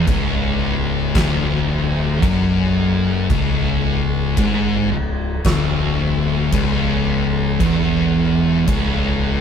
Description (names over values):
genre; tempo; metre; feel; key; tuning
stoner and doom metal; 56 BPM; 4/4; straight; C# phrygian; A4 = 439 Hz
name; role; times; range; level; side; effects
thick fuzz guitar; riff; 0.0-9.4 s; C#2 to G#2; -20 LUFS; left 5 dB; distortion
thick fuzz guitar; riff; 0.0-9.4 s; C#2 to G#2; -21 LUFS; right 2 dB; distortion
growling picked electric bass; bass; 0.0-9.4 s; C#1 to G#1; -25 LUFS; equal; overdrive
oversized low-tuned drum kit; drums; 0.1-8.9 s; crash cymbal, kick drum, snare drum; -22 LUFS; right 1 dB; none
room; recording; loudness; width
light reverb; band playing live in one room; -16 LUFS; side -7 dB against mid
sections
0.0-9.4 A section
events
none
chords
0.0 C#m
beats
0.07 1.14 2.22 | 3.29 4.37 5.45 6.52 | 7.60 8.67